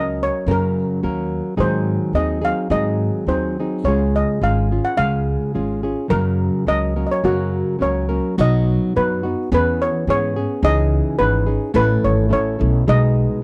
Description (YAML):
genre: mexican folk, mariachi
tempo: 106 BPM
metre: 2/4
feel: rubato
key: F# major, B major from 8.4 s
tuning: A4 = 439 Hz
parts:
  - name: steel pan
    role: melody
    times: 0.0-13.4 s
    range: F#4 to F#5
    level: -24 LUFS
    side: equal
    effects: none
  - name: flamenco guitar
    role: accompaniment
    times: 0.0-13.4 s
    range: F#2 to A#4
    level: -23 LUFS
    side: equal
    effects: none
  - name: upright bass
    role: bass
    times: 0.0-13.2 s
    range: G#1 to G#2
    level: -23 LUFS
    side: equal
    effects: none
room: small room ambience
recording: dry, close 1970s-style studio recording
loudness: -19 LUFS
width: mono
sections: 0.0-8.4 A section; 8.4-13.4 B section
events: none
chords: 0.0 F#; 1.6 G#7; 3.9 C#; 6.1 F#; 8.4 B; 9.5 E6; 10.6 C#madd9; 11.8 A; 12.9 G#m/B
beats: | 0.47 1.03 | 1.59 2.15 | 2.71 3.28 | 3.85 4.42 | 4.98 5.54 | 6.11 6.67 | 7.24 7.81 | 8.38 8.96 | 9.53 10.09 | 10.64 11.20 | 11.76 12.33 | 12.89